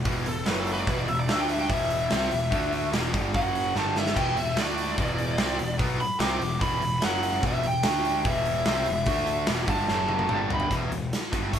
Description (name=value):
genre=hard rock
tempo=146 BPM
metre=4/4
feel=straight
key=E minor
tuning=A4 = 442 Hz
part: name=overdriven semi-hollow guitar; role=riff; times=0.0-11.6 s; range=E2 to D4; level=-32 LUFS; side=right 5 dB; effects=harmonic tremolo
part: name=fuzz picked electric bass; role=bass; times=0.0-11.6 s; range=E1 to D2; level=-31 LUFS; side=left 1 dB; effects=overdrive
part: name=heavy high-gain guitar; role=riff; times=0.1-11.6 s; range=E2 to D4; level=-33 LUFS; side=left 6 dB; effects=distortion
part: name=big rock drum kit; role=drums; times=0.1-11.6 s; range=crash cymbal, hi-hat, kick drum, snare drum, toms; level=-28 LUFS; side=equal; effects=none
part: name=bluesy overdriven lead guitar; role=melody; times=0.3-10.7 s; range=A4 to D6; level=-28 LUFS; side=equal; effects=distortion
room=moderate studio ambience, RT60 0.5 s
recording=band playing live in one room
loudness=-23 LUFS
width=side -9 dB against mid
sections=0.0-10.7 A section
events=lead electric guitar solo 0.0-10.7; drum fill 3.7-4.2, 9.9-10.7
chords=0.5 F#5; 0.9 E5; 1.3 D5; 1.7 Em; 2.5 D5; 2.9 Em; 3.3 F#5; 3.7 G5; 4.2 Em; 4.6 D5; 5.0 Em; 7.0 F#5; 7.4 Em; 7.8 D5; 8.2 Em; 9.1 D5; 9.5 Em; 9.9 F#5; 10.3 G5; 10.7 Em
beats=0.06 0.47 | 0.88 1.29 1.70 2.11 | 2.52 2.92 3.33 3.74 | 4.15 4.56 4.97 5.38 | 5.79 6.20 6.61 7.02 | 7.43 7.84 8.25 8.66 | 9.07 9.48 9.89 10.30 | 10.71 11.12 11.54